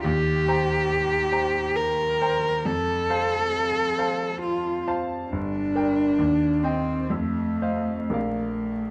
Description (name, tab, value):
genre	classical, romantic duo for cello and grand piano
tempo	55-71 BPM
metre	3/4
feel	rubato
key	unclear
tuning	A4 = 440 Hz
part	dark cello	melody	0.0-8.9 s	A3 to Bb4	-26 LUFS	equal	none
part	bright grand piano	accompaniment	0.0-8.9 s	G1 to Bb5	-29 LUFS	equal	none
room	moderate recital hall reverb, RT60 1.4 s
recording	close, detailed microphones, vinyl crackle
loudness	-24 LUFS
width	mono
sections	0.0-8.9 A section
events	none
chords	0.0 Cm7/Eb; 2.7 F; 5.3 Gm; 6.2 Cm/Eb; 7.1 F7; 8.1 Bb